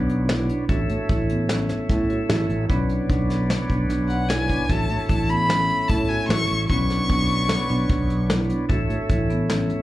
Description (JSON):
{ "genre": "progressive instrumental, band music in an uneven meter", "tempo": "150 BPM", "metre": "5/4", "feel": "straight", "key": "unclear", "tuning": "A4 = 440 Hz", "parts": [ { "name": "percussive tonewheel organ", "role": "accompaniment", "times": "0.0-9.8 s", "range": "A3 to E5", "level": "-30 LUFS", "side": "equal", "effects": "slow rotary speaker, plate reverb, slapback echo" }, { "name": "marimba with soft mallets", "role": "arpeggios", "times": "0.0-9.8 s", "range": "B3 to F#4", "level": "-27 LUFS", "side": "right 2 dB", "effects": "plate reverb" }, { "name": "sustaining fretless electric bass", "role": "bass", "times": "0.0-9.7 s", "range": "A1 to A2", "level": "-24 LUFS", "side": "equal", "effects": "lush chorus" }, { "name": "soft brush drum kit", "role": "drums", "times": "0.1-9.8 s", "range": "hi-hat, kick drum, snare drum", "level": "-25 LUFS", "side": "equal", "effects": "none" }, { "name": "rich violin", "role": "melody", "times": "4.1-8.3 s", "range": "F#5 to C#6", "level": "-24 LUFS", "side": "left 1 dB", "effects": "plate reverb, slapback echo" } ], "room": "light reverb", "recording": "live gig heard through the venue's PA, club reverb", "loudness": "-19 LUFS", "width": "side -15 dB against mid", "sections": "0.0-9.8 A section", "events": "none", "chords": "0.0 Bmadd9; 0.7 A; 2.7 Bmadd9; 4.7 A; 6.7 Bmadd9; 8.7 A" }